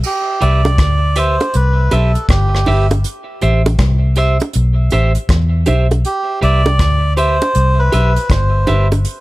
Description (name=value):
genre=roots reggae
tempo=80 BPM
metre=4/4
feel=swing 64% on 16ths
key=C major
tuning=A4 = 439 Hz
part: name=vintage muted fingered electric bass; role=bass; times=0.0-9.0 s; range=G1 to E2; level=-13 LUFS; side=equal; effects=none
part: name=soft brush drum kit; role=drums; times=0.0-9.2 s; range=crash cymbal, hi-hat, kick drum, rim click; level=-19 LUFS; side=equal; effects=none
part: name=melodica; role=melody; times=0.1-8.9 s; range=G4 to D5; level=-18 LUFS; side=right 1 dB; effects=tape echo, plate reverb
part: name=electric guitar at the edge of break-up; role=accompaniment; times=0.4-9.0 s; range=G4 to E5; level=-21 LUFS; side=right 3 dB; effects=tape echo, plate reverb
part: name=bongos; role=percussion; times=0.7-9.0 s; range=none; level=-19 LUFS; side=right 3 dB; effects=none
room=little or no reverb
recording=none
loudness=-12 LUFS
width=side -19 dB against mid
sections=0.0-9.2 A section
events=none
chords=0.0 Cmaj7; 3.0 Am7; 6.0 Cmaj7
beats=| 0.03 0.78 1.53 2.29 | 3.04 3.79 4.54 5.29 | 6.04 6.79 7.54 8.29 | 9.04